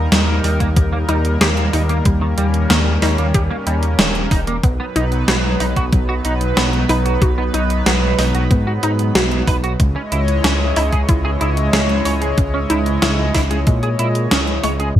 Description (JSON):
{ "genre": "synthwave", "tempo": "93 BPM", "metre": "4/4", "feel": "straight", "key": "unclear", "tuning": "A4 = 444 Hz", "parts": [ { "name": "chorused pulse-width pad", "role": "sustained chords", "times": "0.0-15.0 s", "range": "F#3 to D#5", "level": "-22 LUFS", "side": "equal", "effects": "sidechain pumping" }, { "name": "dark detuned saw bass", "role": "bass", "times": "0.0-14.9 s", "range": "D#1 to A#2", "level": "-18 LUFS", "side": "equal", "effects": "none" }, { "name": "wide unison pluck", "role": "arpeggios", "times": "0.1-15.0 s", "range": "F#3 to G4", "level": "-24 LUFS", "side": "left 1 dB", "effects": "digital delay" }, { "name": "semi-hollow electric guitar", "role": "riff", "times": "0.1-14.9 s", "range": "D#3 to C#5", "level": "-26 LUFS", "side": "right 3 dB", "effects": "analog chorus, low-pass filter, digital delay" }, { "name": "gated 80s digital drum machine", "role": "drums", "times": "0.1-15.0 s", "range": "crash cymbal, hi-hat, snare drum", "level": "-19 LUFS", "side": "equal", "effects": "gated reverb, gated reverb snare, overdrive" }, { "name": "electronic kick drum", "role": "drums", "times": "0.6-13.8 s", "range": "none", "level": "-16 LUFS", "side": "equal", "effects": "overdrive" }, { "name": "sub drop", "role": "sound effects", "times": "15.0 s", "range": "none", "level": "-8 LUFS", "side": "equal", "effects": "none" } ], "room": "light reverb", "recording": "bright 1980s-style digital production, low-pass filter", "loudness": "-14 LUFS", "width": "side -11 dB against mid", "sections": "0.0-15.0 A section", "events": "kick drops out 14.3-15.0", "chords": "0.0 D#; 4.6 B; 9.8 C#madd9" }